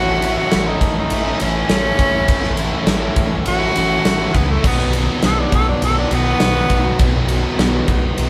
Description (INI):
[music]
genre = classic rock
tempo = 102 BPM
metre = 4/4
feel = straight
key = unclear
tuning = A4 = 440 Hz
[part]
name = breathy tenor saxophone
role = melody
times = 0.0-7.3 s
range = A3 to A4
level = -22 LUFS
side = equal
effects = none
[part]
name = biting overdriven guitar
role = riff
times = 0.0-8.3 s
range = A2 to E4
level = -27 LUFS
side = equal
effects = spring reverb
[part]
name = crunchy overdriven guitar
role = riff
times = 0.0-8.0 s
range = A2 to F#4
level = -27 LUFS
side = equal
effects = spring reverb
[part]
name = tight distorted guitar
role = riff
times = 0.0-8.3 s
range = A2 to E4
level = -29 LUFS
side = equal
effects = none
[part]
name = growling picked electric bass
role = bass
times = 0.0-8.3 s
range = A1 to C#2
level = -24 LUFS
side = equal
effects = overdrive
[part]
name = huge arena drum kit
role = drums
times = 0.2-8.3 s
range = crash cymbal, kick drum, ride cymbal, snare drum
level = -21 LUFS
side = equal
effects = none
[sound]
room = moderate stone room reverb, RT60 1.1 s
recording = band playing live in one room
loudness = -17 LUFS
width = mono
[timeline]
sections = 0.0-8.3 A section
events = tenor saxophone solo 0.0-8.3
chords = 0.0 A; 4.6 B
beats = 0.52 1.10 1.70 | 2.29 2.88 3.46 4.05 | 4.64 5.23 5.82 6.41 | 7.00 7.59 8.18